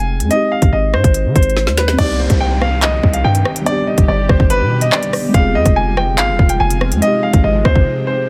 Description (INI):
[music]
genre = hip hop, drill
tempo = 143 BPM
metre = 4/4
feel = half-time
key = C harmonic minor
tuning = A4 = 440 Hz
[part]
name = clear concert grand piano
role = melody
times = 0.0-8.3 s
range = B4 to Ab5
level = -20 LUFS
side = equal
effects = tape echo
[part]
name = muted felt-like synth keys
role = accompaniment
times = 0.0-8.3 s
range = G3 to Ab4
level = -25 LUFS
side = equal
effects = chorus
[part]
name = hard-hitting 808-style bass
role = bass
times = 0.0-7.9 s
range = F1 to Eb3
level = -19 LUFS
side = equal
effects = none
[part]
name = drill drum kit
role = drums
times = 0.2-7.9 s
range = crash cymbal, handclaps, hi-hat, kick drum, rim click, snare drum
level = -17 LUFS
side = equal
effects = none
[part]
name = granular cloud pad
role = sustained chords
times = 2.9-8.3 s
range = C3 to G4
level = -26 LUFS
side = equal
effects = built-in reverb
[part]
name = downlifter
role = sound effects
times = 2.0-5.3 s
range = none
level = -30 LUFS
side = equal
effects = none
[sound]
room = little or no reverb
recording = none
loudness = -14 LUFS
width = mono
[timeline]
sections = 0.0-2.0 A section; 2.0-8.3 B section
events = drum fill 1.6-2.0; break 7.9-8.3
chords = 0.3 Abmaj7; 2.0 Cm; 3.7 G; 5.3 Fm; 7.0 Abmaj7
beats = | 0.31 0.73 1.15 1.57 | 1.99 2.40 2.82 3.24 | 3.66 4.08 4.50 4.92 | 5.34 5.76 6.18 6.60 | 7.02 7.44 7.86 8.28